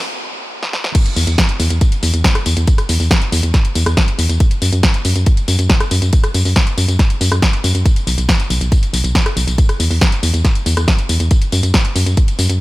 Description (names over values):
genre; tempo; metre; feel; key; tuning
uplifting trance; 139 BPM; 4/4; straight; unclear; A4 = 435 Hz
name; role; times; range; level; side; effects
solid FM bass; bass; 0.0-12.6 s; B1 to F#2; -15 LUFS; equal; sidechain pumping, high-pass filter
house drum kit; drums; 0.6-12.6 s; crash cymbal, hi-hat, rim click, snare drum, tambourine; -18 LUFS; left 1 dB; studio reverb
electronic kick drum; drums; 0.9-12.3 s; none; -13 LUFS; equal; studio reverb
room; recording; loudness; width
little or no reverb; high-pass filter; -12 LUFS; side -19 dB against mid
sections
0.9-12.6 A section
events
stop 0.1-0.9; drum fill 0.6-0.9; drop 0.9-12.6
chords
none